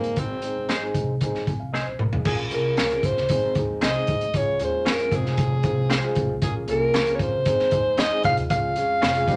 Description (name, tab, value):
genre	uptempo 1960s-style soul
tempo	115 BPM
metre	4/4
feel	straight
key	unclear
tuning	A4 = 440 Hz
part	clear alto saxophone	melody	0.0-9.4 s	Bb3 to F5	-26 LUFS	equal	none
part	dark upright piano	accompaniment	0.0-9.4 s	G3 to Ab5	-32 LUFS	equal	none
part	upright bass	bass	0.0-9.4 s	F1 to Ab2	-32 LUFS	equal	none
part	crunchy breakbeat drum kit	drums	0.0-9.4 s	crash cymbal, hi-hat, kick drum, snare drum, toms	-28 LUFS	equal	none
part	semi-hollow electric guitar	stabs	0.7-9.1 s	Bb3 to Db5	-33 LUFS	equal	none
part	vibraphone with medium mallets	second line	6.4-9.4 s	Ab3 to F4	-40 LUFS	equal	none
room	moderate club reverb, RT60 0.7 s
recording	none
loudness	-23 LUFS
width	mono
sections	0.0-2.3 A section; 2.3-9.4 B section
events	drum fill 1.7-2.3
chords	0.0 Ab; 2.3 Bbm7; 3.3 Ab; 4.3 Db; 5.1 Fm; 6.4 Bbm7; 7.5 Ab; 8.5 Db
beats	| 0.17 0.69 1.22 1.74 | 2.26 2.78 3.30 3.82 | 4.34 4.86 5.38 5.90 | 6.42 6.94 7.46 7.98 | 8.50 9.02